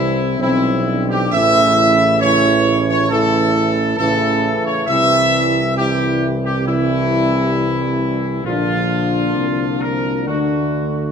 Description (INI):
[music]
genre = classical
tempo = 67 BPM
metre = 4/4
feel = straight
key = unclear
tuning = A4 = 442 Hz
[part]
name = clear trumpet section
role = melody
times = 0.0-11.1 s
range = E4 to E5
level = -17 LUFS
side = equal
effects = none
[part]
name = clear trombone section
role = sustained chords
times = 0.0-11.1 s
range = C3 to C4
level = -24 LUFS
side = right 2 dB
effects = none
[part]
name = warm French horn section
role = sustained chords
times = 0.0-11.1 s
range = G3 to E4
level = -21 LUFS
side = left 4 dB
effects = none
[part]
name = mellow tuba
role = bass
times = 0.0-11.1 s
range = A1 to D2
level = -20 LUFS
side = right 4 dB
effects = none
[sound]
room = moderate scoring stage reverb, RT60 1.6 s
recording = none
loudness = -14 LUFS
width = side -7 dB against mid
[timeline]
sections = 0.0-11.1 A section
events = none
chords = 0.0 C; 1.3 A; 4.9 C; 8.4 Bb; 10.3 D